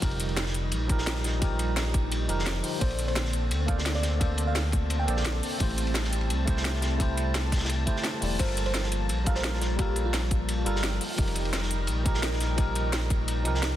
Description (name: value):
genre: liquid drum and bass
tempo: 172 BPM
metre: 4/4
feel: straight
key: unclear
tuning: A4 = 441 Hz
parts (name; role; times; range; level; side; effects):
- tine electric piano; accompaniment; 0.0-13.8 s; F3 to D5; -33 LUFS; equal; auto-pan, digital delay
- warm analog pad; sustained chords; 0.0-13.8 s; D3 to A5; -37 LUFS; right 1 dB; chorus, sidechain pumping
- smooth synth bass; bass; 0.0-13.8 s; E1 to D2; -29 LUFS; equal; none
- crunchy breakbeat drum kit; drums; 0.0-13.7 s; hi-hat, ride cymbal, snare drum; -35 LUFS; equal; high-pass filter on cymbals, high-pass filter on hats, high-pass filter on snare, high-pass filter on room
- drum and bass drum kit; drums; 0.0-13.7 s; crash cymbal, hi-hat, snare drum; -34 LUFS; equal; none
- electronic kick drum; drums; 0.0-13.2 s; none; -27 LUFS; equal; none
- bell-like FM electric piano; melody; 2.8-5.1, 8.4-10.4 s; F4 to G5; -37 LUFS; equal; chorus, ping-pong delay
room: light reverb, small room ambience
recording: dense, heavily limited modern master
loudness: -25 LUFS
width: side -12 dB against mid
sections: 0.0-13.8 A section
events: none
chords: 0.0 F9sus4; 2.8 Bbmaj9; 5.6 Am7; 8.4 Gm9; 11.0 F9sus4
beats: | 0.02 0.37 0.72 1.07 | 1.42 1.77 2.12 2.46 | 2.81 3.16 3.51 3.86 | 4.21 4.56 4.91 5.25 | 5.60 5.95 6.30 6.65 | 7.00 7.35 7.70 8.04 | 8.39 8.74 9.09 9.44 | 9.79 10.14 10.49 10.84 | 11.19 11.53 11.88 12.23 | 12.58 12.93 13.28 13.63